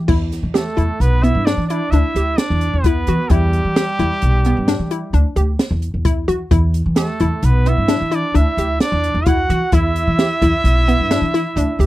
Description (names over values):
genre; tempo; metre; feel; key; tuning
progressive instrumental, band music in an uneven meter; 131 BPM; 7/4; straight; E minor; A4 = 439 Hz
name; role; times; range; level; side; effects
upright bass; bass; 0.0-11.9 s; B1 to E3; -17 LUFS; equal; none
glassy wavetable pluck; arpeggios; 0.1-11.9 s; B3 to G4; -21 LUFS; left 2 dB; chorus
open jazz drum kit; drums; 0.1-11.9 s; crash cymbal, hi-hat, kick drum, snare drum; -19 LUFS; equal; none
clear trumpet; melody; 0.6-11.9 s; G4 to F#5; -22 LUFS; equal; none
breathy flugelhorn; second line; 0.6-11.9 s; G3 to F#4; -25 LUFS; right 6 dB; none
room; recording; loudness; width
little or no reverb; dry, close 1970s-style studio recording; -14 LUFS; side -16 dB against mid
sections
0.1-11.9 A section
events
none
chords
0.1 Em7